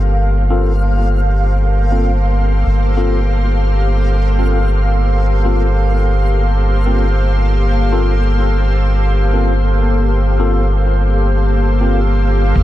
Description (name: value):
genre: ambient dub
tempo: 97 BPM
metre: 4/4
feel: swing 58% on 16ths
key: G minor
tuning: A4 = 443 Hz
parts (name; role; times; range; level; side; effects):
- soft additive organ-like pad; sustained chords; 0.0-12.6 s; Bb3 to F5; -20 LUFS; equal; ensemble chorus, built-in reverb
- soft dub sub bass; bass; 0.0-12.6 s; G1; -13 LUFS; equal; none
- backwards swelling texture; texture; 0.0-12.6 s; F5; -30 LUFS; right 1 dB; built-in reverb
- tine electric piano; stabs; 0.5-12.0 s; Bb3 to A4; -24 LUFS; left 3 dB; phaser, dub echo
- electronic kick drum; drums; 12.6 s; none; -14 LUFS; equal; none
room: little or no reverb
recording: echo-heavy mix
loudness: -12 LUFS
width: side -14 dB against mid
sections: 0.0-12.6 A section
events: none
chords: 0.0 Gm11